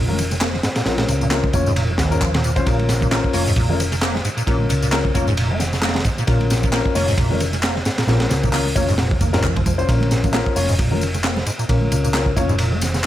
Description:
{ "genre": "breakbeat, breaks", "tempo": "133 BPM", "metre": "4/4", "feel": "swing 56% on 16ths", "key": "Bb minor", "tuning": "A4 = 439 Hz", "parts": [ { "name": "deep acid bass", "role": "riff", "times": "0.0-13.1 s", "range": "Bb1 to Bb3", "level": "-23 LUFS", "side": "equal", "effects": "ensemble chorus, ping-pong delay" }, { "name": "hollow-body short-scale picked electric bass", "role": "bass", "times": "0.0-13.1 s", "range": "F1 to Eb2", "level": "-22 LUFS", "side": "right 1 dB", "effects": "none" }, { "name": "dark baby grand piano", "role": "stabs", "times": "0.1-12.5 s", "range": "Db4 to Db5", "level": "-24 LUFS", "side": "left 5 dB", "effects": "ping-pong delay" }, { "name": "congas", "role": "percussion", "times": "0.1-13.1 s", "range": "none", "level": "-31 LUFS", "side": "right 5 dB", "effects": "none" }, { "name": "crunchy breakbeat drum kit", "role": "drums", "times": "0.2-13.0 s", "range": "hi-hat, kick drum, ride cymbal, snare drum", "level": "-21 LUFS", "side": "right 1 dB", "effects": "none" }, { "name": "electronic tambourine and handclaps", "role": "drums", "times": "0.2-13.1 s", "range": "none", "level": "-28 LUFS", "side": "left 1 dB", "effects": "overdrive" } ], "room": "small room reverb", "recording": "none", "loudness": "-16 LUFS", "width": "side -13 dB against mid", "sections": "0.0-13.1 A section", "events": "none", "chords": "0.0 Bbm" }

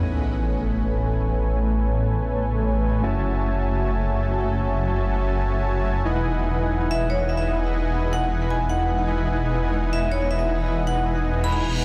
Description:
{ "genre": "future bass", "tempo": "159 BPM", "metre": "4/4", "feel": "swing 54% on 16ths, half-time", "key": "E major", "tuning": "A4 = 440 Hz", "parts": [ { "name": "tine electric piano", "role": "accompaniment", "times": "0.0-6.0 s", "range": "A3 to G#5", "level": "-36 LUFS", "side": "equal", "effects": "tape echo" }, { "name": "shimmering ambient pad", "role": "sustained chords", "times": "1.8-11.8 s", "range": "C#3 to D#5", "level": "-38 LUFS", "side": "equal", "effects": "chorus, built-in reverb, phaser" }, { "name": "concert harp", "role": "arpeggios", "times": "0.0-2.4, 6.1-11.8 s", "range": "D#4 to G#5", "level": "-35 LUFS", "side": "equal", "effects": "tape echo" }, { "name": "soft supersaw", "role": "riff", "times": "0.0-11.8 s", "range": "A3 to A5", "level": "-29 LUFS", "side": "equal", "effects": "cassette tape, low-pass filter, tape echo" }, { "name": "detuned saw bass", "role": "bass", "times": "0.0-11.8 s", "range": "E1 to A1", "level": "-26 LUFS", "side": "equal", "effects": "chorus" }, { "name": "sub drop and reverse cymbal", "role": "sound effects", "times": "0.0-1.5, 11.4-11.8 s", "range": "none", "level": "-31 LUFS", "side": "equal", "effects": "none" }, { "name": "vibraphone with medium hard mallets", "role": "melody", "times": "6.9-11.6 s", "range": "C#5 to B5", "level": "-31 LUFS", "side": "equal", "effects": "digital delay" } ], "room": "digital ambience", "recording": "dense, heavily limited modern master", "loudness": "-23 LUFS", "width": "mono", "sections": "0.0-11.8 A section", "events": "impact 0.0-1.5; filter sweep on supersaw synth 0.0-11.8; reverse cymbal 11.4-11.8", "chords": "0.0 Amaj7; 3.0 F#m7; 6.1 Emaj7" }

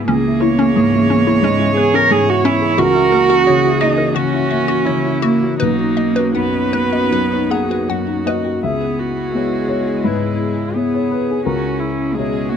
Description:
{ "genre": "neoclassical piano and strings", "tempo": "75-90 BPM", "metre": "4/4", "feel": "rubato", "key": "C# dorian", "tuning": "A4 = 440 Hz", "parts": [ { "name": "muted cello", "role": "second line", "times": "0.0-12.6 s", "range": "G#3 to A#4", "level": "-17 LUFS", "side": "right 4 dB", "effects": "none" }, { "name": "dark upright piano", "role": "accompaniment", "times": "0.0-12.6 s", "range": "B1 to F#5", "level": "-19 LUFS", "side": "left 3 dB", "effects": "none" }, { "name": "muted viola", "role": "accompaniment", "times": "0.0-12.6 s", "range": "D#4 to C#5", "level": "-22 LUFS", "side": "right 2 dB", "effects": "none" }, { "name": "airy breathy pad", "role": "sustained chords", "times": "0.0-12.6 s", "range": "E3 to G#4", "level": "-24 LUFS", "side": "left 3 dB", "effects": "chorus" }, { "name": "hollow square pluck", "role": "arpeggios", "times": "0.1-8.4 s", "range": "C#4 to A#5", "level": "-23 LUFS", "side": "left 4 dB", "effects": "chorus, tape echo" } ], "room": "light reverb", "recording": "close, detailed microphones", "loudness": "-14 LUFS", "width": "side -8 dB against mid", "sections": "0.0-8.6 A section; 8.6-12.6 A section", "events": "none", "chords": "0.0 C#m7; 2.8 F#7/C#; 5.6 Bmaj7; 8.6 C#m7" }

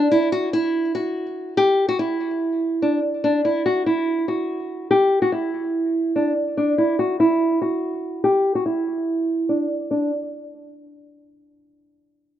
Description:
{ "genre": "hip hop", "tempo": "144 BPM", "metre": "4/4", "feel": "half-time", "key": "unclear", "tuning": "A4 = 440 Hz", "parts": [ { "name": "nylon-string guitar", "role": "solo", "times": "0.0-10.1 s", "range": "D4 to G4", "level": "-19 LUFS", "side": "equal", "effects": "low-pass filter" } ], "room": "light reverb, small room ambience", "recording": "rough home demo mix, low-pass filter", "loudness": "-19 LUFS", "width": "side -11 dB against mid", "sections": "0.0-9.9 A section; 9.9-11.6 B section", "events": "filter sweep 0.0-9.9", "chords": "none" }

